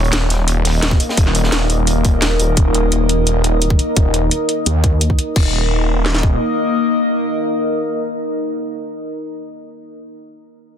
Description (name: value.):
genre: dark technical drum and bass.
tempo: 172 BPM.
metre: 4/4.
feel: straight.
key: unclear.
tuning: A4 = 440 Hz.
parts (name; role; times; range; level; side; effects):
deep dark ambient pad; sustained chords; 0.0-8.6 s; Eb4 to Eb5; -22 LUFS; right 1 dB; chorus, built-in reverb, sidechain pumping.
snarling distorted saw bass; bass; 0.0-6.4 s; Eb1 to Eb2; -16 LUFS; equal; distortion, sidechain pumping.
crunchy breakbeat drum kit; drums; 0.0-2.5 s; hi-hat, snare drum; -26 LUFS; equal; high-pass filter on hats, high-pass filter on snare, high-pass filter on room.
warbly tape-like pad; texture; 0.0-8.7 s; Bb3 to Eb6; -23 LUFS; left 4 dB; chorus, built-in reverb, phaser, sidechain pumping.
drum and bass drum kit; drums; 0.1-5.4 s; crash cymbal, hi-hat, snare drum; -19 LUFS; equal; none.
drum and bass drum kit; drums; 0.9-6.3 s; kick drum, snare drum; -15 LUFS; equal; none.
room: light reverb, digital ambience.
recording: dense, heavily limited modern master.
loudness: -14 LUFS.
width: side -9 dB against mid.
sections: 0.0-5.4 A section; 5.4-8.2 B section.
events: fade-out on ambient pad 0.0-5.4; filter sweep on detuned saw bass 0.0-5.4.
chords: 0.0 Eb5.